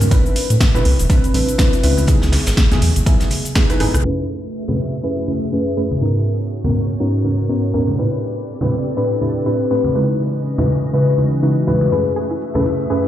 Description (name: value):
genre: deep house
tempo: 122 BPM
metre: 4/4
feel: swing 58% on 16ths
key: F# dorian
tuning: A4 = 441 Hz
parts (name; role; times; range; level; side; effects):
- deep mellow chord stab; stabs; 0.0-13.1 s; F#2 to B4; -18 LUFS; equal; analog chorus, sidechain pumping, ping-pong delay
- round analog bass; bass; 0.0-4.0 s; E1 to A2; -16 LUFS; equal; sidechain pumping
- deep house drum kit; drums; 0.0-13.1 s; cabasa, crash cymbal, hi-hat, rim click, snare drum; -23 LUFS; equal; overdrive, low-pass filter on hats, low-pass filter on perc, low-pass filter on snare, low-pass filter on cymbals
- vintage brush drum kit; drums; 0.0-3.9 s; hi-hat, snare drum; -30 LUFS; right 1 dB; sidechain pumping on hats, high-pass filter on hats, high-pass filter on snare, high-pass filter on room
- congas; percussion; 0.0-12.6 s; none; -24 LUFS; right 1 dB; sidechain pumping on perc
- electronic kick drum; drums; 0.1-3.7 s; none; -15 LUFS; equal; overdrive
- hollow soft pad; sustained chords; 4.0-13.1 s; E3 to E5; -26 LUFS; left 1 dB; ensemble chorus, sidechain pumping
- soft round pluck; arpeggios; 11.9-13.1 s; E4 to A4; -27 LUFS; right 1 dB; chorus, sidechain pumping, ping-pong delay
room: moderate lush hall reverb, RT60 1.9 s, small room ambience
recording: played on a big sound system in a bare room, stone room reverb, low-pass filter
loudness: -15 LUFS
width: side -12 dB against mid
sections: 0.0-4.0 A section; 4.0-13.1 B section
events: filter sweep on synth stab 0.0-4.0; drum fill 3.7-4.0; band accent 3.9; filter sweep 4.0-13.1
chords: 0.1 Am11; 2.1 C#m11; 4.0 F#m11; 6.0 G#m11; 8.0 Am11; 9.9 C#m11; 11.9 F#m11